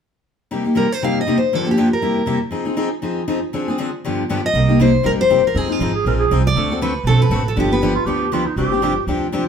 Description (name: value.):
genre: acoustic string swing (jazz manouche).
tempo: 238 BPM.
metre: 4/4.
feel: swing 56% on 8ths.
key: C minor.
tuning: A4 = 439 Hz.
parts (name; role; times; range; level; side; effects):
picked steel-string acoustic guitar; accompaniment; 0.5-9.4 s; G2 to A4; -19 LUFS; left 2 dB; none.
picked steel-string acoustic guitar; melody; 0.8-2.4, 4.5-8.4 s; F4 to F5; -20 LUFS; left 1 dB; none.
upright bass; bass; 4.5-9.5 s; G1 to F2; -20 LUFS; right 2 dB; none.
growling clarinet; second line; 5.9-9.0 s; Eb4 to Bb4; -21 LUFS; right 5 dB; none.
room: wet studio reverb, RT60 0.8 s.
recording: band playing live in one room.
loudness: -16 LUFS.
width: side -7 dB against mid.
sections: 0.5-4.5 A section; 4.5-9.5 B section.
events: none.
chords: 0.5 Cm7; 1.5 Gm7; 2.0 C7; 2.5 Fm7; 3.5 Dm7b5; 4.0 G7; 4.5 Cm7; 5.6 Fm7; 6.6 D7; 7.6 G7; 8.6 G7sus4.